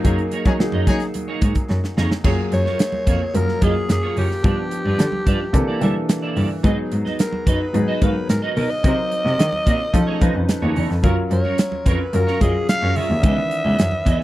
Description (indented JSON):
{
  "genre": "polished 1980s jazz-funk pop",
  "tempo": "109 BPM",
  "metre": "4/4",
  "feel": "straight",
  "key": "unclear",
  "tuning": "A4 = 440 Hz",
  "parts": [
    { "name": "warm concert grand piano", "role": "accompaniment", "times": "0.0-14.2 s", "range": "D#3 to B4", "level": "-25 LUFS", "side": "left 1 dB", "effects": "wide subtle chorus" },
    { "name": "clean electric guitar", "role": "riff", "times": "0.0-14.2 s", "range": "A3 to E#5", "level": "-27 LUFS", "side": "right 4 dB", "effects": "ensemble chorus" },
    { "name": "warm cello", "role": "bass", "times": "0.0-14.1 s", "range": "C#2 to G3", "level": "-21 LUFS", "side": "equal", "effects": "none" },
    { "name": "modern studio drum kit", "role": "drums", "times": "0.0-14.2 s", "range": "crash cymbal, hi-hat, kick drum, snare drum", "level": "-18 LUFS", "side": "equal", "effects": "none" },
    { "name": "congas", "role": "percussion", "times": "0.1-14.2 s", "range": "none", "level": "-31 LUFS", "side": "right 4 dB", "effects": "none" },
    { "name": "warm horn section", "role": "second line", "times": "0.5-1.1 s", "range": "C#4 to G#4", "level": "-26 LUFS", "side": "left 6 dB", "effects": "none" },
    { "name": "breathy alto saxophone", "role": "melody", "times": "2.5-14.2 s", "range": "G4 to E#5", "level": "-24 LUFS", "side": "equal", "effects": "none" }
  ],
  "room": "little or no reverb",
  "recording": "dry, close 1970s-style studio recording",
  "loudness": "-17 LUFS",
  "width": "side -15 dB against mid",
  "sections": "0.0-2.2 A section; 2.2-14.2 B section",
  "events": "drum fill 1.7-2.2",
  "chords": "0.0 F#69; 4.4 G7; 5.5 C13 (rootless); 6.6 G#m7; 8.8 Cm7b5; 9.9 F7alt; 11.0 F#maj7; 13.2 C#m9"
}